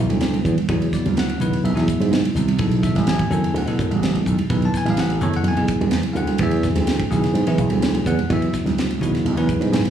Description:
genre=electric jazz fusion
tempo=126 BPM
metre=4/4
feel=straight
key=unclear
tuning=A4 = 437 Hz
part: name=bell-like tine electric piano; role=accompaniment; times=0.0-9.9 s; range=C#3 to A5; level=-22 LUFS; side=left 1 dB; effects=fast stereo tremolo, slapback echo
part: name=slap bass with an envelope filter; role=bass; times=0.0-9.8 s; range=A1 to E3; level=-21 LUFS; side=right 1 dB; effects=none
part: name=crisp fusion drum kit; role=drums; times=0.1-9.9 s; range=hi-hat, kick drum, ride cymbal, snare drum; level=-26 LUFS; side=right 1 dB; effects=none
part: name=congas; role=percussion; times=0.1-9.9 s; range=none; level=-26 LUFS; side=right 6 dB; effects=slapback echo
room=light reverb, studio ambience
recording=live gig heard through the venue's PA, club reverb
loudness=-17 LUFS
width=side -9 dB against mid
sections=0.0-9.9 A section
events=none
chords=0.0 E7sus2; 2.6 B7(no3); 6.4 E9

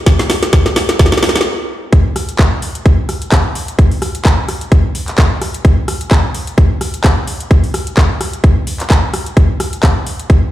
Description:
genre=house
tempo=129 BPM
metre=4/4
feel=swing 56% on 16ths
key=none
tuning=none
part: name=electronic kick drum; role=drums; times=0.1-10.4 s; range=none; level=-8 LUFS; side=equal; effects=none
part: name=garage drum kit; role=drums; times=0.1-10.4 s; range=handclaps, hi-hat, rim click, snare drum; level=-17 LUFS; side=equal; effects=none
room=light reverb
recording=played on a big sound system in a bare room, large studio reverb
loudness=-11 LUFS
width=side -14 dB against mid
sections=0.0-1.9 A section; 1.9-10.5 B section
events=build-up 0.0-1.9; drum fill 0.0-1.5; stop 1.5-1.9; drop 1.9-10.5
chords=none

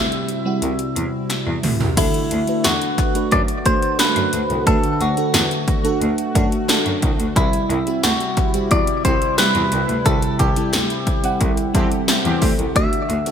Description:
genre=1980s-style pop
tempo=89 BPM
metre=4/4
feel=straight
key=D mixolydian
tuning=A4 = 443 Hz
part: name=direct-recorded clean electric guitar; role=melody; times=0.0-13.3 s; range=E4 to E5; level=-22 LUFS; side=equal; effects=wide subtle chorus, digital delay
part: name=FM electric piano with soft pad layer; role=accompaniment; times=0.0-13.3 s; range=C3 to F#5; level=-23 LUFS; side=right 1 dB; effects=chorus, phaser
part: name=chorused pulse-width pad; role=sustained chords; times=0.0-13.3 s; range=C3 to F#4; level=-26 LUFS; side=equal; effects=none
part: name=bright cello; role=bass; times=0.0-13.2 s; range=C2 to F#2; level=-24 LUFS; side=equal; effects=none
part: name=80s electronic pad drums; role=drums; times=0.1-13.3 s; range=crash cymbal, hi-hat, kick drum, snare drum, tambourine, toms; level=-20 LUFS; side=equal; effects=gated reverb on snare and toms, gated reverb
part: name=group handclap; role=percussion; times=1.3-12.2 s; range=none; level=-35 LUFS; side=left 5 dB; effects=none
part: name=analog synth brass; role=stabs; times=11.7-12.5 s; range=E3 to G4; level=-25 LUFS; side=left 2 dB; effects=chorus
room=moderate plate reverb, RT60 2.6 s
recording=bright 1980s-style digital production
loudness=-16 LUFS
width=side -8 dB against mid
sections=0.0-2.0 A section; 2.0-13.3 B section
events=drum fill 1.3-2.0; band accent 10.1-12.8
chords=0.0 C; 2.0 D; 7.4 C; 12.8 D

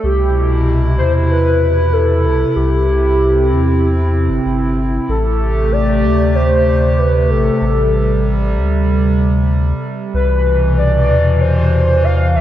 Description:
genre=IDM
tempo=95 BPM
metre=4/4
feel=straight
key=A minor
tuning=A4 = 440 Hz
part: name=warbly nostalgic lead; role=melody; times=0.0-12.4 s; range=G4 to F5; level=-17 LUFS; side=equal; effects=wide subtle chorus, analog delay
part: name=hollow soft pad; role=sustained chords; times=0.0-12.4 s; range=B2 to G4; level=-17 LUFS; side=equal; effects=chorus
part: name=warm sub bass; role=bass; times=0.0-12.4 s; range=G1 to E2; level=-15 LUFS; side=equal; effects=none
room=moderate lush hall reverb, RT60 3.0 s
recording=dreamy mix soaked in reverb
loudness=-12 LUFS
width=side -12 dB against mid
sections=0.0-5.1 A section; 5.1-12.4 B section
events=none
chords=0.0 Cmaj7; 5.1 Am7; 10.1 Cmaj7

